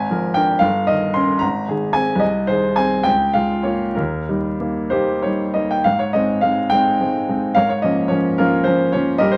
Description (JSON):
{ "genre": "classical, romantic character piece for solo piano", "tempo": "62-79 BPM (dotted quarters)", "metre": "6/8", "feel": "rubato", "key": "Ab major", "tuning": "A4 = 440 Hz", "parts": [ { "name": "warm grand piano", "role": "solo", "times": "0.0-9.4 s", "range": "G1 to C6", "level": "-18 LUFS", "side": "equal", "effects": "none" } ], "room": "moderate small room reverb, RT60 0.5 s", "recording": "vinyl crackle", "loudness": "-18 LUFS", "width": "mono", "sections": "0.0-5.9 A section; 5.9-9.4 B section", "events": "none", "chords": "0.0 Bb7/Ab; 0.6 Eb7/G; 1.4 Ab; 2.2 Ab/C; 3.1 Bbm7/Db; 4.0 Eb; 5.9 Ab; 7.6 Bbm7/Ab", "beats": "| 0.63 1.42 | 2.22 3.06 | 3.97 4.92 | 5.86 6.73 | 7.58 8.39 | 9.20" }